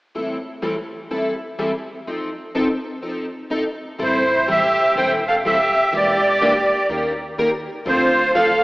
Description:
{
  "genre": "acoustic string swing (jazz manouche)",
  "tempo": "124 BPM",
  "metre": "4/4",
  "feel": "swing 65% on 8ths",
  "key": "A minor",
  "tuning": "A4 = 440 Hz",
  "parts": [
    { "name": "picked plugged-in steel-string acoustic guitar", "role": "accompaniment", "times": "0.1-8.5 s", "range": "A2 to A#4", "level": "-23 LUFS", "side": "left 1 dB", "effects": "analog chorus" },
    { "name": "musette accordion", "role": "melody", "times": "4.0-8.6 s", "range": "C5 to G5", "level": "-17 LUFS", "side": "right 1 dB", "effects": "analog delay" },
    { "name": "warm violin", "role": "second line", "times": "4.0-8.6 s", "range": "E4 to C5", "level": "-23 LUFS", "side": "right 1 dB", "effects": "none" },
    { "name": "upright bass", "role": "bass", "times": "4.0-8.6 s", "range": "E1 to D#2", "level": "-35 LUFS", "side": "equal", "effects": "none" }
  ],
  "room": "wet lush hall reverb, RT60 3.0 s",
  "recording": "dreamy mix soaked in reverb, AM radio sound",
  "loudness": "-17 LUFS",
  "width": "side -22 dB against mid",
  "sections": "0.1-4.0 A section; 4.0-8.6 B section",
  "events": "none",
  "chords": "0.1 Am7; 2.1 F7; 4.0 Am7; 5.9 Em7b5; 6.9 D#7; 7.9 Dm7",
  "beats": "| 0.14 0.62 1.11 1.59 | 2.07 2.56 3.04 3.52 | 4.00 4.48 4.96 5.45 | 5.93 6.41 6.89 7.37 | 7.85 8.34"
}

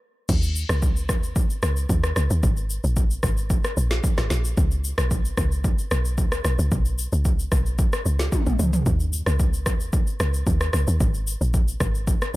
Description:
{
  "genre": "amapiano",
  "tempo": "112 BPM",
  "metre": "4/4",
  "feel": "straight",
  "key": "unclear",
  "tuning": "A4 = 437 Hz",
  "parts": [
    { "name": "woody log drum bass", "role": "bass", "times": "0.3-12.2 s", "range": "Ab1 to Eb2", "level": "-23 LUFS", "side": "equal", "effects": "none" },
    { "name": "deep house drum kit", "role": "drums", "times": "0.3-12.3 s", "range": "crash cymbal, kick drum, rim click, shaker, snare drum, toms", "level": "-23 LUFS", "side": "equal", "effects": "none" }
  ],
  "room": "little or no reverb",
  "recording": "none",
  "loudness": "-20 LUFS",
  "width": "side -18 dB against mid",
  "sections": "0.3-12.4 A section",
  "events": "break 0.0; drum fill 8.3-8.9",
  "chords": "none",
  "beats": "| 0.29 0.82 1.36 1.90 | 2.43 2.97 3.50 4.04 | 4.58 5.11 5.65 6.18 | 6.72 7.25 7.79 8.32 | 8.86 9.40 9.93 10.47 | 11.00 11.54 12.07"
}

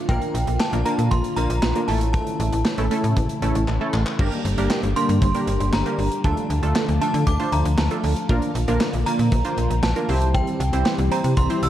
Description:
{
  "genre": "synth-pop",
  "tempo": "117 BPM",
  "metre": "4/4",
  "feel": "straight",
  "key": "unclear",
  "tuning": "A4 = 440 Hz",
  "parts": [
    { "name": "string machine, full ensemble", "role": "sustained chords", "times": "0.0-11.7 s", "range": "C#3 to G4", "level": "-27 LUFS", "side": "left 1 dB", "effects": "ensemble chorus" },
    { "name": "synth chime", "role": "melody", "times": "0.1-11.7 s", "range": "G5 to E6", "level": "-28 LUFS", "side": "right 1 dB", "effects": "ensemble chorus, tape echo" },
    { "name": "funky polysynth comp", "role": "accompaniment", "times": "0.1-11.7 s", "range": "A3 to C5", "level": "-26 LUFS", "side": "right 1 dB", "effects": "chorus" },
    { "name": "slap-like FM bass", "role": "bass", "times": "0.1-11.7 s", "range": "G1 to D3", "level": "-22 LUFS", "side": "equal", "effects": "none" },
    { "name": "modern studio drum kit", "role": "drums", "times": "0.1-11.7 s", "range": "crash cymbal, handclaps, hi-hat, kick drum, snare drum", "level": "-25 LUFS", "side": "equal", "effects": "none" }
  ],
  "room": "light reverb, small room ambience",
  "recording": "dark, warm production",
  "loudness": "-19 LUFS",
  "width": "side -12 dB against mid",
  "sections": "0.0-4.2 A section; 4.2-11.7 B section",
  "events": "drum fill 3.7-4.2",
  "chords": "0.1 Bb; 1.9 A; 4.2 Gm; 6.2 Dm; 8.3 Bb; 10.1 C",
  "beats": "| 0.09 0.60 1.11 1.63 | 2.14 2.65 3.17 3.68 | 4.19 4.70 5.22 5.73 | 6.24 6.76 7.27 7.78 | 8.29 8.81 9.32 9.83 | 10.35 10.86 11.37"
}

